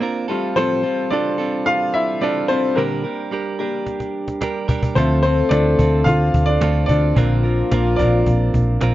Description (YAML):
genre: piano-driven pop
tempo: 109 BPM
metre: 4/4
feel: straight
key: D minor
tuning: A4 = 442 Hz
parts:
  - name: warm baby grand piano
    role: accompaniment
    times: 0.0-8.9 s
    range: F3 to F5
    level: -20 LUFS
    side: left 2 dB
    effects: plate reverb
  - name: direct-recorded clean electric guitar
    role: riff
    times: 0.0-8.9 s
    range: A2 to Bb4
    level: -24 LUFS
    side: right 5 dB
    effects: none
  - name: cajon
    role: drums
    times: 3.9-8.9 s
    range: none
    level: -22 LUFS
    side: equal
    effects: none
  - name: mellow French horn section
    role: second line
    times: 5.0-8.8 s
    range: F3 to A4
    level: -24 LUFS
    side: left 3 dB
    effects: plate reverb
  - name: hollow-body short-scale picked electric bass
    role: bass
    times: 5.0-8.9 s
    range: Bb1 to D2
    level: -17 LUFS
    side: equal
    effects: none
room: light reverb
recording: dark, warm production, nothing above 7.5 kHz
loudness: -16 LUFS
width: side -14 dB against mid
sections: 0.0-8.9 A section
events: grand piano solo 0.0-8.9; drum fill 3.9-5.0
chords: 0.3 Fadd9/A; 2.8 Gm/Bb; 5.0 Dm7; 7.2 Bbadd9